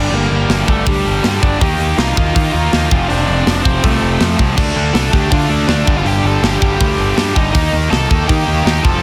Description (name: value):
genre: punk rock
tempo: 162 BPM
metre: 4/4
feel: straight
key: G minor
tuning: A4 = 440 Hz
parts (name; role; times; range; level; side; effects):
- high-gain lead guitar; melody; 0.0-9.0 s; G3 to A5; -22 LUFS; equal; distortion
- tight distorted guitar; riff; 0.0-9.0 s; F2 to Eb4; -24 LUFS; equal; distortion
- tight distorted guitar; riff; 0.0-9.0 s; F2 to Eb4; -24 LUFS; equal; distortion
- growling picked electric bass; bass; 0.0-9.0 s; F1 to Eb3; -20 LUFS; equal; overdrive
- tight metal drum kit; drums; 0.5-8.9 s; crash cymbal, hi-hat, kick drum, snare drum; -19 LUFS; equal; none
- heavy high-gain guitar; riff; 4.6-9.0 s; F2 to Eb4; -26 LUFS; equal; none
room: light reverb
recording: dense, heavily limited modern master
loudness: -14 LUFS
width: mono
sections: 0.0-9.0 A section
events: none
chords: 0.0 Gm; 1.6 Eb; 2.9 F; 4.6 Dm; 5.9 G5; 7.5 Eb